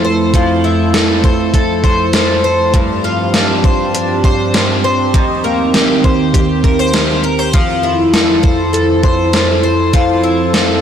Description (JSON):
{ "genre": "dream pop", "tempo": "100 BPM", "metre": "4/4", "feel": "straight", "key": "unclear", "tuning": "A4 = 440 Hz", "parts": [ { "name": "warbly tape-like pad", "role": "sustained chords", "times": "0.0-10.8 s", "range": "Eb2 to A4", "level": "-15 LUFS", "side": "right 2 dB", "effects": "chorus, built-in reverb" }, { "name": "picked twelve-string acoustic guitar", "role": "arpeggios", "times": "0.0-10.8 s", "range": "G2 to C5", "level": "-14 LUFS", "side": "left 2 dB", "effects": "analog chorus, digital delay" }, { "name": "gated 80s digital drum machine", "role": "drums", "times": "0.3-10.7 s", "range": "hi-hat, kick drum, snare drum", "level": "-14 LUFS", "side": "equal", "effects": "gated reverb, gated reverb snare" } ], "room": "moderate huge ambient reverb, RT60 4.0 s", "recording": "blown-out, overdriven recording, overdrive", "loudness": "-10 LUFS", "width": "side -8 dB against mid", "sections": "0.0-10.8 A section", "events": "none", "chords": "0.0 Fmaj7; 2.7 G7sus4; 5.1 Eb6; 7.5 Fmaj7" }